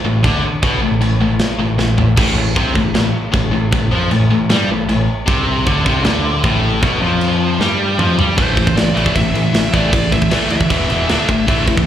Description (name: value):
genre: heavy metal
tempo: 155 BPM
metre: 4/4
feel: straight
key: A minor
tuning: A4 = 440 Hz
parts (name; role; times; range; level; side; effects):
- high-gain distorted guitar; riff; 0.0-11.8 s; E2 to D4; -17 LUFS; left 4 dB; distortion, slapback echo
- growling picked electric bass; bass; 0.0-11.7 s; E1 to G2; -20 LUFS; right 1 dB; overdrive
- scooped high-gain guitar; riff; 0.1-11.8 s; E2 to D4; -22 LUFS; right 12 dB; distortion, slapback echo
- tight metal drum kit; drums; 0.2-11.9 s; china cymbal, crash cymbal, kick drum, snare drum, toms; -18 LUFS; equal; none
- high-gain lead guitar; melody; 8.4-11.6 s; C5 to E5; -22 LUFS; right 1 dB; distortion, tape echo
room: little or no reverb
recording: live gig heard through the venue's PA, club reverb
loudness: -13 LUFS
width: side -10 dB against mid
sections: 0.0-8.4 A section; 8.4-11.9 B section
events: half time 0.0-8.4; drum fill 1.8-2.2, 7.6-8.4; lead electric guitar solo 8.4-11.9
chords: 0.0 Am; 8.4 A5; 10.7 E5; 11.1 D5